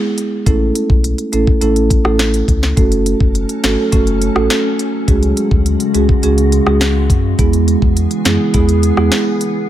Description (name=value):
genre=dancehall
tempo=104 BPM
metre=4/4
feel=straight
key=unclear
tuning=A4 = 440 Hz
part: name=afro-pop drum kit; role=drums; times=0.2-9.5 s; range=hi-hat, kick drum, rim click, snare drum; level=-15 LUFS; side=left 1 dB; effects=none
part: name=marimba with soft mallets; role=accompaniment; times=0.5-9.2 s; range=G#3 to A4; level=-15 LUFS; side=right 3 dB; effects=sidechain pumping
part: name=sub bass with octave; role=bass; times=0.5-9.1 s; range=F#1 to F#2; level=-16 LUFS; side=left 1 dB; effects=none
part: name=glassy FM pad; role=sustained chords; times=2.8-9.7 s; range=C#3 to A4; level=-21 LUFS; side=left 3 dB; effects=ensemble chorus, built-in reverb
room=digital ambience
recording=none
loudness=-11 LUFS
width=side -12 dB against mid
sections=0.0-9.7 A section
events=none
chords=0.5 A; 2.8 F#m; 5.1 C#sus4; 7.4 E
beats=| 0.47 1.04 1.62 2.19 | 2.77 3.35 3.93 4.50 | 5.08 5.66 6.23 6.81 | 7.39 7.96 8.54 9.12